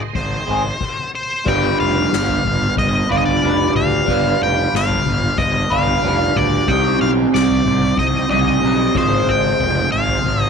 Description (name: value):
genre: psychedelic rock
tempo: 92 BPM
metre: 4/4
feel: straight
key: G phrygian dominant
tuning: A4 = 440 Hz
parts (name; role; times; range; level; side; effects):
- tonewheel organ; sustained chords; 0.0-10.5 s; B3 to C6; -29 LUFS; right 15 dB; slow rotary speaker, overdrive, chorus vibrato
- soft-mallet drum kit; drums; 0.1-10.4 s; crash cymbal, kick drum, snare drum, toms; -24 LUFS; left 4 dB; none
- octave-fuzz lead guitar; melody; 0.2-10.5 s; C5 to G5; -20 LUFS; left 2 dB; distortion, tape echo
- fuzz fingered electric bass; bass; 0.2-10.5 s; F1 to D2; -21 LUFS; right 1 dB; overdrive
- electric guitar through a small old amp; riff; 0.5-10.5 s; C3 to Eb5; -18 LUFS; right 2 dB; flanger
room: small room ambience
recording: 1960s-style stereo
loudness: -14 LUFS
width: side -6 dB against mid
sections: 0.0-1.5 A section; 1.5-10.5 B section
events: stop 0.8-1.5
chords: 0.0 Ab; 1.5 G7; 6.7 Cmadd9; 9.0 Ab6